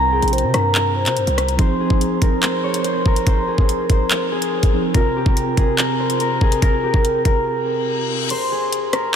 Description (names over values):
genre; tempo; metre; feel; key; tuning
hip hop, drill; 143 BPM; 4/4; half-time; F minor; A4 = 440 Hz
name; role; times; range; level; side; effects
concert harp; melody; 0.0-9.2 s; G4 to C6; -20 LUFS; left 1 dB; low-pass filter, ping-pong delay
mellow tine electric piano; accompaniment; 0.0-8.3 s; C3 to Bb4; -24 LUFS; right 3 dB; ensemble chorus, low-pass filter
hard-hitting 808-style bass; bass; 0.0-1.6 s; Bb1 to C3; -20 LUFS; equal; none
hollow clarinet-like synth lead; second line; 0.1-1.6 s; Ab4 to C5; -28 LUFS; left 3 dB; chorus, ping-pong delay
drill drum kit; drums; 0.2-9.0 s; crash cymbal, handclaps, hi-hat, kick drum, rim click; -19 LUFS; equal; overdrive
reverse cymbal; sound effects; 7.7-8.3 s; none; -28 LUFS; left 7 dB; none
room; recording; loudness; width
moderate huge ambient reverb, RT60 8.6 s; dreamy mix soaked in reverb; -16 LUFS; side -8 dB against mid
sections
0.0-1.6 A section; 1.6-8.3 B section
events
break 7.5-8.3; reverse cymbal 7.7-8.3; kick muted 8.3-9.2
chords
0.0 C7sus4; 1.6 Fm7; 4.9 C7sus4; 8.3 N.C.